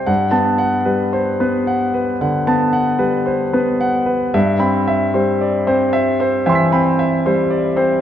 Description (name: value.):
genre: classical, impressionist solo piano.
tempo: 57 BPM.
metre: 4/4.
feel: rubato.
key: unclear.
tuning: A4 = 443 Hz.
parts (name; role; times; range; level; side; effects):
clear concert grand piano; solo; 0.0-8.0 s; G2 to B6; -14 LUFS; equal; none.
room: moderate concert hall reverb, RT60 1.8 s.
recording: none.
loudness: -14 LUFS.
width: side -10 dB against mid.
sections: 0.0-8.0 A section.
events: none.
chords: 0.1 Gmaj9; 4.3 Cmaj7/G.